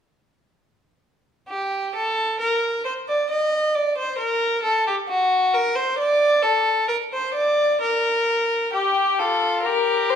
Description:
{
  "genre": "classical, baroque-style fugue for string quartet",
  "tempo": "66 BPM",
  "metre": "4/4",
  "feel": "straight",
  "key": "G minor",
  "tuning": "A4 = 440 Hz",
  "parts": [
    { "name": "warm violin", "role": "second line", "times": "1.5-10.2 s", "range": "F4 to Eb5-21c", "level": "-20 LUFS", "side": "equal", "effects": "none" },
    { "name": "dark violin", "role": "melody", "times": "8.7-10.2 s", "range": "G4 to C5", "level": "-20 LUFS", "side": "left 5 dB", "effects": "none" }
  ],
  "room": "moderate recital hall reverb, RT60 1.2 s",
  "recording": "minimal, uncompressed stereo recording",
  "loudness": "-19 LUFS",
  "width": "side -8 dB against mid",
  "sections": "1.5-8.7 A section; 8.7-10.2 B section",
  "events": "none",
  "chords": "1.5 N.C.; 8.7 Gm"
}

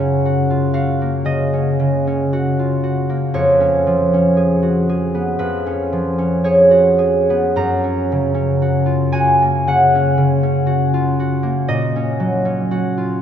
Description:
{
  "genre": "classical, solo harp piece",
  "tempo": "58 BPM",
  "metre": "4/4",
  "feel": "rubato",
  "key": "F# major",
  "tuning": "A4 = 437 Hz",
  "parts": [
    { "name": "concert harp", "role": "solo", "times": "0.0-13.2 s", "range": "E#2 to A#5", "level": "-14 LUFS", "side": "equal", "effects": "none" }
  ],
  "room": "wet cathedral reverb, RT60 6.2 s",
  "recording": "none",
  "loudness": "-14 LUFS",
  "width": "side -9 dB against mid",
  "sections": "0.0-13.2 A section",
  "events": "none",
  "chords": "0.0 F#; 3.4 C#7/E#; 7.6 F#; 11.7 F#/A#"
}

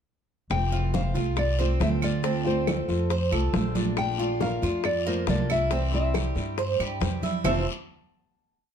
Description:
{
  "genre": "latin, Cuban son and guajira",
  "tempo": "138 BPM",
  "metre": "4/4",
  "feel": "straight",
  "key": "F major",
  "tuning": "A4 = 440 Hz",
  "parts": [
    { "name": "nylon-string guitar", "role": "melody", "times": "0.5-7.7 s", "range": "C5 to A5", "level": "-30 LUFS", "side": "left 2 dB", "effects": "none" },
    { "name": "picked steel-string acoustic guitar", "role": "accompaniment", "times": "0.5-7.6 s", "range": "F2 to F4", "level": "-31 LUFS", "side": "equal", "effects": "none" },
    { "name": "upright bass", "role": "bass", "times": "0.5-7.6 s", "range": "F1 to G2", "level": "-27 LUFS", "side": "equal", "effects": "none" },
    { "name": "bongos", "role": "percussion", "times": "0.5-7.5 s", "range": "none", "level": "-34 LUFS", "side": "left 8 dB", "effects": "none" },
    { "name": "claves", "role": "percussion", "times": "0.5-7.5 s", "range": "none", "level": "-37 LUFS", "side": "right 8 dB", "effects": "none" },
    { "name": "congas", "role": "percussion", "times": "0.5-7.5 s", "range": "none", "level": "-32 LUFS", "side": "right 2 dB", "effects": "none" },
    { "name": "guiro", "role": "percussion", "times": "0.5-7.6 s", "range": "none", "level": "-40 LUFS", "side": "left 7 dB", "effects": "none" },
    { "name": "Cuban tres", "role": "arpeggios", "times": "0.7-7.7 s", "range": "Bb3 to E5", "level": "-32 LUFS", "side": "right 6 dB", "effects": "none" }
  ],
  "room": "light reverb",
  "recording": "dark, warm production",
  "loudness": "-23 LUFS",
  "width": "side -8 dB against mid",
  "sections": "0.5-7.4 verse; 7.4-8.7 final chord",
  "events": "none",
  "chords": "0.5 Fmaj7; 2.2 Dm7; 4.0 Bbmaj7; 5.7 C; 7.4 Fmaj7"
}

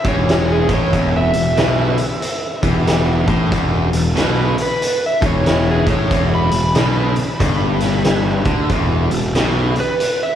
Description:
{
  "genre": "blues rock power trio and southern rock",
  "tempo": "93 BPM",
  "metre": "4/4",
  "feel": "swing 63% on 8ths",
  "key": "unclear",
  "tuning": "A4 = 440 Hz",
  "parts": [
    { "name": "overdriven slide guitar", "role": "melody", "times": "0.0-10.4 s", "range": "G#4 to B5", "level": "-21 LUFS", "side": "right 1 dB", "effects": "slapback echo" },
    { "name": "distorted electric guitar", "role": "riff", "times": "0.0-9.7 s", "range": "E2 to D3", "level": "-20 LUFS", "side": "left 1 dB", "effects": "overdrive, slapback echo" },
    { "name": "fuzz picked electric bass", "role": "bass", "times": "0.0-9.7 s", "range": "E1 to D2", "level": "-19 LUFS", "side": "equal", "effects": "overdrive" },
    { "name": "oversized low-tuned drum kit", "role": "drums", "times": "0.0-10.2 s", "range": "hi-hat, kick drum, snare drum", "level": "-19 LUFS", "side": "equal", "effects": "none" }
  ],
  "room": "light reverb",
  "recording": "live gig heard through the venue's PA, club reverb",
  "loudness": "-14 LUFS",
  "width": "side -10 dB against mid",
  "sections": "0.0-10.4 A section",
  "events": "none",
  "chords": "0.0 E5"
}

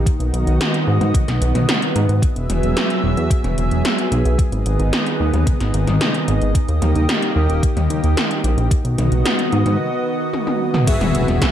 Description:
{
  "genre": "synthwave",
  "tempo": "111 BPM",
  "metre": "4/4",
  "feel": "straight",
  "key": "B major",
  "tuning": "A4 = 440 Hz",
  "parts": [
    { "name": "lush unison pad", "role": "sustained chords", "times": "0.0-11.5 s", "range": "D#3 to E5", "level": "-21 LUFS", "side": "right 1 dB", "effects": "chorus, sidechain pumping" },
    { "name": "chorused synth bass", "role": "bass", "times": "0.0-11.4 s", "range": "D#1 to G#2", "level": "-18 LUFS", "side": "equal", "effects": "none" },
    { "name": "80s electronic pad drums", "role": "drums", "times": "0.1-11.5 s", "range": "crash cymbal, hi-hat, snare drum, toms", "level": "-21 LUFS", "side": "equal", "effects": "gated reverb on snare and toms, gated reverb" },
    { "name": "electronic kick drum", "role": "drums", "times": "0.1-11.5 s", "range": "none", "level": "-17 LUFS", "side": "equal", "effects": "overdrive" },
    { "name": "analog synth brass", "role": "stabs", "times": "10.9-11.5 s", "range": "B3 to E5", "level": "-21 LUFS", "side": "left 2 dB", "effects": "chorus, vintage 12-bit sampler grit" },
    { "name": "impact", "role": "sound effects", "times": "10.9-11.5 s", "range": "none", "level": "-26 LUFS", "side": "equal", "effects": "none" }
  ],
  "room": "light reverb, digital ambience",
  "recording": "none",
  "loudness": "-15 LUFS",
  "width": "side -10 dB against mid",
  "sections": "0.0-10.9 A section",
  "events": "break 9.8-10.9; drum fill 10.3-10.9; impact 10.9-11.5",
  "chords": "0.1 B; 2.2 Eadd9; 4.4 G#m; 6.6 D#; 8.7 B; 10.9 Eadd9"
}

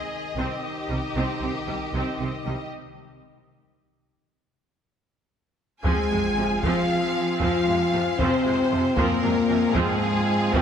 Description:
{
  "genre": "cinematic, epic orchestral film score",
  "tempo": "77 BPM (dotted quarters)",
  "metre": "12/8",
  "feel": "straight",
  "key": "F minor",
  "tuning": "A4 = 439 Hz",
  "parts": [
    { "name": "clear symphonic violin section", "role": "melody", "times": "0.0-10.6 s", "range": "Ab4 to Ab5", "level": "-33 LUFS", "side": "left 4 dB", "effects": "none" },
    { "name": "rich studio violin section", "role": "second line", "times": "0.0-10.6 s", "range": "G4 to Ab5", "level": "-32 LUFS", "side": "left 2 dB", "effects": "none" },
    { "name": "warm French horn section", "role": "sustained chords", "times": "0.0-10.6 s", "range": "Eb3 to Ab4", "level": "-26 LUFS", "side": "left 4 dB", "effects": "none" },
    { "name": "rich symphonic viola section", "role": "accompaniment", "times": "0.4-10.6 s", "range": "C3 to C4", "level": "-30 LUFS", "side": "right 2 dB", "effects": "none" },
    { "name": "rich symphonic cello section", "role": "bass", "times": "0.4-10.6 s", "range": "Ab2 to Ab3", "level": "-30 LUFS", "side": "right 3 dB", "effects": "none" },
    { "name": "rich symphonic double bass section", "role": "bass", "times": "0.4-10.6 s", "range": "C2 to F2", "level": "-32 LUFS", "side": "right 4 dB", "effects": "none" },
    { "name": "warm symphonic string section", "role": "sustained chords", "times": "5.8-10.6 s", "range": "C4 to F5", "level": "-33 LUFS", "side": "right 2 dB", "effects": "none" },
    { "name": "warm trombone section", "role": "sustained chords", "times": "5.8-10.6 s", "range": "F3 to C4", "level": "-32 LUFS", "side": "right 5 dB", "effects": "none" },
    { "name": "taiko ensemble", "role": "drums", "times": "5.8-10.6 s", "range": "none", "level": "-29 LUFS", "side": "equal", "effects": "none" },
    { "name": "sub drop", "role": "sound effects", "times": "6.0-9.0 s", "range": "none", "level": "-36 LUFS", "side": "equal", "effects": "none" }
  ],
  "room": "wet concert hall reverb, RT60 1.9 s",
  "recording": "none",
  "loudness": "-21 LUFS",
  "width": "side -8 dB against mid",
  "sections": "0.0-5.9 A section; 5.9-10.6 B section",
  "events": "build-up 0.0-5.9; break 2.7-5.9; impact 5.9-9.0",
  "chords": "0.0 Cm; 2.7 N.C.; 5.9 Fm"
}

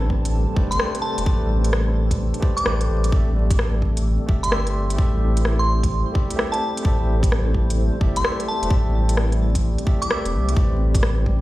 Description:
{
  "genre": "future garage",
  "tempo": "129 BPM",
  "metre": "4/4",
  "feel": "swing 64% on 16ths",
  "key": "unclear",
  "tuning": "A4 = 440 Hz",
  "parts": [
    { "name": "barky tine electric piano", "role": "accompaniment", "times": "0.0-11.4 s", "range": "A3 to E5", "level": "-30 LUFS", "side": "equal", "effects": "medium tremolo, sidechain pumping, analog delay" },
    { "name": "granular cloud pad", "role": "sustained chords", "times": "0.0-11.4 s", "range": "G3 to A5", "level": "-29 LUFS", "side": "equal", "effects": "built-in reverb, sidechain pumping" },
    { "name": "warm sub bass", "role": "bass", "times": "0.0-11.4 s", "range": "E1 to C2", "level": "-20 LUFS", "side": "equal", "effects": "sidechain pumping" },
    { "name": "electronic kick drum", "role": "drums", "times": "0.1-11.4 s", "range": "none", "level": "-20 LUFS", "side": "equal", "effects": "small room ambience" },
    { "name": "organic electronic drum kit", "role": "drums", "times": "0.3-11.2 s", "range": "hi-hat, rim click", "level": "-26 LUFS", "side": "equal", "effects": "small room ambience" },
    { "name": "glassy synth bell", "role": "melody", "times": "0.7-10.5 s", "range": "A5 to D6", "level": "-28 LUFS", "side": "equal", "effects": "chorus, tremolo, vintage 12-bit sampler grit, tape echo" }
  ],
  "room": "digital ambience",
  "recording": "played on a big sound system in a bare room, large studio reverb, vinyl crackle",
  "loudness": "-18 LUFS",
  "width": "side -17 dB against mid",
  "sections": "0.0-11.4 A section",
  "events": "none",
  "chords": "0.0 Am11; 3.1 C6; 10.6 Am11"
}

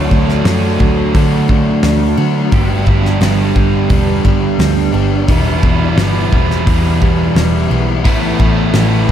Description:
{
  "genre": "rock, shoegaze and dream pop",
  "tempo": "87 BPM",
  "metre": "4/4",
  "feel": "straight",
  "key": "unclear",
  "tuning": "A4 = 441 Hz",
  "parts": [
    { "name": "picked twelve-string acoustic guitar", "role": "arpeggios", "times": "0.0-9.1 s", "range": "E3 to G4", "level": "-23 LUFS", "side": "right 5 dB", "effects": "wide subtle chorus, ping-pong delay" },
    { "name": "biting overdriven guitar", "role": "riff", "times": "0.0-9.1 s", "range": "E2 to G4", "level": "-18 LUFS", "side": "right 6 dB", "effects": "reverse reverb" },
    { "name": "overdriven semi-hollow guitar", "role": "riff", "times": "0.0-9.1 s", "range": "E2 to G4", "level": "-18 LUFS", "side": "left 6 dB", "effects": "wide subtle chorus" },
    { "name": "vintage muted picked electric bass", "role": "bass", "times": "0.0-9.1 s", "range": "E1 to D3", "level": "-16 LUFS", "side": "equal", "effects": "none" },
    { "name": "loose indie drum kit", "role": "drums", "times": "0.1-9.1 s", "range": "hi-hat, kick drum, snare drum", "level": "-16 LUFS", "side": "equal", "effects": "none" },
    { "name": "overdriven electric guitar", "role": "riff", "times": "8.0-9.1 s", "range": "A2 to A3", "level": "-20 LUFS", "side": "left 1 dB", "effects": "analog chorus" }
  ],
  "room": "moderate lush hall reverb, RT60 2.5 s",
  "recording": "dreamy mix soaked in reverb",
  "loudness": "-10 LUFS",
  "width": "side -10 dB against mid",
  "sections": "0.0-9.1 A section",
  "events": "none",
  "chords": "0.0 D; 2.5 G; 5.3 Em; 8.1 Asus2"
}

